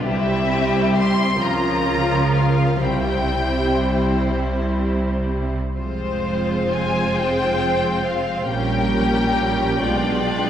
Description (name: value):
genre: classical, slow romantic movement for string orchestra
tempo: 40-48 BPM (dotted quarters)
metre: 6/8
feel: rubato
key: F minor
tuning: A4 = 441 Hz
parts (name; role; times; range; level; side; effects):
- rich studio violin section; second line; 0.0-10.5 s; E4 to D5; -24 LUFS; left 1 dB; none
- bright studio viola section; accompaniment; 0.0-10.5 s; F3 to F4; -23 LUFS; right 1 dB; none
- bright studio double bass section; bass; 0.0-10.5 s; F1 to Db2; -25 LUFS; right 2 dB; none
- clear studio cello section; bass; 0.0-10.5 s; F2 to Db3; -26 LUFS; right 2 dB; none
- rich studio violin section; melody; 0.1-10.5 s; C5 to C6; -24 LUFS; left 4 dB; none
room: wet concert hall reverb, RT60 2.4 s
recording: heard from further back in the room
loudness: -18 LUFS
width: side -10 dB against mid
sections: 0.0-10.5 A section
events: none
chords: 0.1 C; 1.4 Bbm/Db; 2.8 C; 5.8 Fm; 8.5 Gdim/Bb; 9.8 Bdim7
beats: | 0.07 1.41 | 2.82 4.31 | 5.79 7.19 | 8.51 9.85